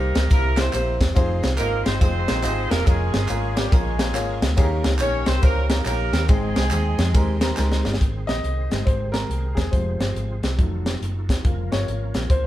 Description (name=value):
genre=uptempo gospel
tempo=140 BPM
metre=4/4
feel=swing 63% on 8ths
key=Ab major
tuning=A4 = 442 Hz
part: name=mellow horn section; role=melody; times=0.0-7.5 s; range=G3 to Db5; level=-26 LUFS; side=right 1 dB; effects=none
part: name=dark upright piano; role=accompaniment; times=0.0-12.5 s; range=Ab2 to G5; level=-27 LUFS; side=left 1 dB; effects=none
part: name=hollow-body short-scale fingered electric bass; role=bass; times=0.0-12.5 s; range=E1 to F2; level=-24 LUFS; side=equal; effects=none
part: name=crisp fusion drum kit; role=drums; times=0.2-12.4 s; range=hi-hat, kick drum, ride cymbal, snare drum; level=-22 LUFS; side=equal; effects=none
part: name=tambourine and handclaps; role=percussion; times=0.2-7.9 s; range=none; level=-36 LUFS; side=right 2 dB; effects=none
part: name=bright tonewheel organ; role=sustained chords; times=1.2-12.5 s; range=Eb3 to Db6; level=-38 LUFS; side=right 4 dB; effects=fast rotary speaker, chorus vibrato
room=light reverb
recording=band playing live in one room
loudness=-19 LUFS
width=side -14 dB against mid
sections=0.0-8.0 A section; 8.0-12.5 B section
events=drum fill 7.6-8.0; upright piano solo 8.0-12.5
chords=0.3 C7; 1.2 Fm7; 2.9 Bbm7/F; 4.6 Eb7; 6.3 Abmaj7; 8.0 Ab; 9.7 Fm; 10.6 F7b9; 11.4 Bbm/F